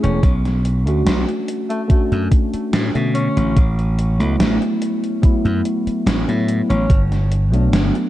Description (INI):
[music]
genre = vaporwave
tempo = 72 BPM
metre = 4/4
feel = straight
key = unclear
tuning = A4 = 440 Hz
[part]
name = warm alto saxophone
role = melody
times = 0.0-7.0 s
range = A3 to C#4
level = -29 LUFS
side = equal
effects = tape echo
[part]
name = tine electric piano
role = accompaniment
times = 0.0-8.1 s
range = D3 to G#4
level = -21 LUFS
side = left 1 dB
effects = lush chorus, vintage 12-bit sampler grit, analog delay
[part]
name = glassy slap bass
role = bass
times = 0.0-7.9 s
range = E1 to B2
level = -18 LUFS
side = equal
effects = none
[part]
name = gated 80s digital drum machine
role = drums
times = 0.0-8.1 s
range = hi-hat, snare drum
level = -22 LUFS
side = equal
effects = gated reverb, gated reverb snare, overdrive, vintage 12-bit sampler grit
[part]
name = electronic kick drum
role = drums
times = 0.2-7.1 s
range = none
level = -14 LUFS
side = equal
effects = overdrive, vintage 12-bit sampler grit
[sound]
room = light reverb, digital ambience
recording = dark, warm production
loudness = -15 LUFS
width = side -14 dB against mid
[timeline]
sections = 0.0-8.1 A section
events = none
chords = 0.2 Bm7; 3.6 Asus2; 6.9 Gmaj7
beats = | 0.23 1.07 1.90 2.73 | 3.57 4.40 5.23 6.07 | 6.90 7.73